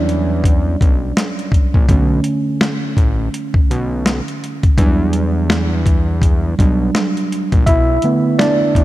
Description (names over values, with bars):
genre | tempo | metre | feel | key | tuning
lo-fi hip hop | 83 BPM | 4/4 | swing 61% on 16ths | B minor | A4 = 441 Hz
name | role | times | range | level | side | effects
tine electric piano | accompaniment | 0.0-8.8 s | D3 to E5 | -18 LUFS | right 2 dB | low-pass filter
fat analog bass | bass | 0.0-8.8 s | A1 to E2 | -18 LUFS | equal | none
dusty soul sampler-style drum kit | drums | 0.1-8.8 s | hi-hat, kick drum, snare drum | -15 LUFS | equal | none
room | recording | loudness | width
light reverb | none | -13 LUFS | side -15 dB against mid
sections
0.0-8.8 A section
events
tine electric piano solo 0.0-8.8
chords
0.0 Em9; 1.9 Bm9; 4.8 Em9; 7.7 Bm7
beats
0.44 1.16 | 1.88 2.61 3.33 4.05 | 4.78 5.50 6.22 6.94 | 7.67 8.39